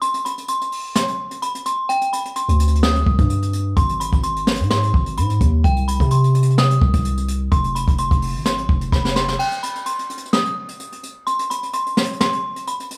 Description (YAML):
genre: hip hop, trap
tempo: 128 BPM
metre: 4/4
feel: half-time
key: C harmonic minor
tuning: A4 = 442 Hz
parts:
  - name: delicate synth tine bell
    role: melody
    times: 0.0-12.9 s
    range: G5 to Eb6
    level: -25 LUFS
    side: equal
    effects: chorus, low-pass filter, digital delay
  - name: jazz brush drum kit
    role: drums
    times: 0.0-13.0 s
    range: crash cymbal, hi-hat, kick drum, snare drum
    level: -23 LUFS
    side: equal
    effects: none
  - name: long sustained 808-style bass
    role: bass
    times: 2.5-9.4 s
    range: F1 to C3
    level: -21 LUFS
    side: equal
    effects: none
room: light reverb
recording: small room ambience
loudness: -19 LUFS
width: mono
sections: 0.0-13.0 A section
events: break 0.0-1.9, 9.4-13.0; kick muted 1.9-2.4; drum fill 8.9-9.4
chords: 0.0 N.C.; 1.9 Cmadd9; 3.8 Ab; 5.6 Cm; 7.5 Fm; 9.4 N.C.